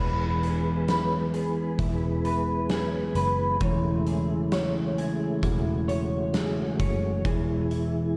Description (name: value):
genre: dream pop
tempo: 66 BPM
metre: 4/4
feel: straight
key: E major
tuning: A4 = 440 Hz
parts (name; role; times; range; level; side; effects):
- percussive tonewheel organ; sustained chords; 0.0-8.2 s; B2 to B4; -32 LUFS; equal; chorus vibrato, slow rotary speaker
- electric guitar at the edge of break-up; arpeggios; 0.0-8.2 s; E3 to C#5; -31 LUFS; equal; analog chorus, analog delay
- vintage muted picked electric bass; bass; 0.0-8.2 s; E1 to F#1; -33 LUFS; equal; none
- oversized low-tuned drum kit; drums; 0.4-7.9 s; hi-hat, kick drum, snare drum; -34 LUFS; equal; none
room: light reverb, small room ambience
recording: none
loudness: -26 LUFS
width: mono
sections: 0.0-8.2 A section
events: none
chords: 0.0 E; 3.6 Amaj7/E; 7.2 E